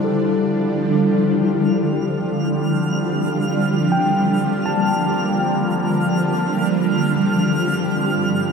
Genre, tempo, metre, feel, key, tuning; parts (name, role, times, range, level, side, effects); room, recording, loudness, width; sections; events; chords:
ambient; free time; G dorian; A4 = 442 Hz
shimmering ambient pad; sustained chords; 0.0-8.5 s; G2 to A4; -18 LUFS; equal; chorus, built-in reverb, phaser
tine electric piano; arpeggios; 0.0-8.5 s; G3 to A5; -23 LUFS; left 1 dB; phaser, ping-pong delay
twinkling granular texture; texture; 1.7-8.5 s; F6; -28 LUFS; right 3 dB; built-in reverb
wet huge ambient reverb, RT60 7.8 s; dark, warm production; -17 LUFS; side -5 dB against mid
1.0-8.5 A section
0.0 Gsus2; 1.0 Gmadd9; 6.9 Dm/G